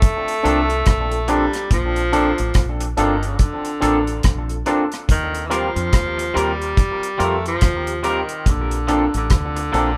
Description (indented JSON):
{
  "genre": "lovers rock reggae",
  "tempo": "71 BPM",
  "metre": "4/4",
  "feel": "swing 60% on 16ths",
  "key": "Bb major",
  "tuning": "A4 = 442 Hz",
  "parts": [
    { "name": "breathy tenor saxophone", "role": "melody", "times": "0.0-10.0 s", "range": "D3 to A3", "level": "-26 LUFS", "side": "equal", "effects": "none" },
    { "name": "deep reggae drum kit", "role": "drums", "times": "0.0-10.0 s", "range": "hi-hat, kick drum, rim click", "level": "-21 LUFS", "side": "equal", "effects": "none" },
    { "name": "barky tine electric piano", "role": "accompaniment", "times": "0.4-9.9 s", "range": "C4 to Bb4", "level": "-25 LUFS", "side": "equal", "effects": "tape echo" },
    { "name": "twangy electric guitar", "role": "stabs", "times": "0.4-9.9 s", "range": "F3 to Bb4", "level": "-29 LUFS", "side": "equal", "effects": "spring reverb" },
    { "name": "deep dub fingered electric bass", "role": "bass", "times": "0.4-10.0 s", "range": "G1 to F2", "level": "-27 LUFS", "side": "equal", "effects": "none" }
  ],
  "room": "moderate small room reverb, RT60 0.5 s",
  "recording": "band playing live in one room",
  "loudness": "-19 LUFS",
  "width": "mono",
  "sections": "0.0-10.0 A section",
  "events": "none",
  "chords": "0.0 Bbmaj7; 5.1 Eb69; 8.5 Bbmaj7"
}